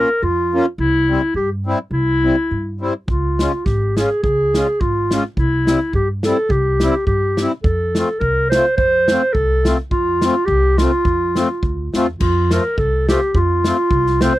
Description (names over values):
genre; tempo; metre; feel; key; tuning
alpine folk, alpine dance band; 106 BPM; 2/4; swing 54% on 8ths; F major; A4 = 440 Hz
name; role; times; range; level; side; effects
mellow clarinet; melody; 0.0-14.4 s; E4 to C5; -17 LUFS; equal; none
accordion; accompaniment; 0.0-14.3 s; G3 to F4; -19 LUFS; left 2 dB; none
upright bass; bass; 0.0-14.3 s; Ab1 to G2; -20 LUFS; equal; none
natural country drum kit; drums; 3.1-14.3 s; crash cymbal, kick drum, snare drum; -22 LUFS; equal; none
room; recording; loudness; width
light reverb; dry, close 1970s-style studio recording; -15 LUFS; side -16 dB against mid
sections
0.0-12.2 A section; 12.2-14.4 B section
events
none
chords
0.0 Bbm; 0.8 C; 3.1 Db; 5.4 C; 7.7 F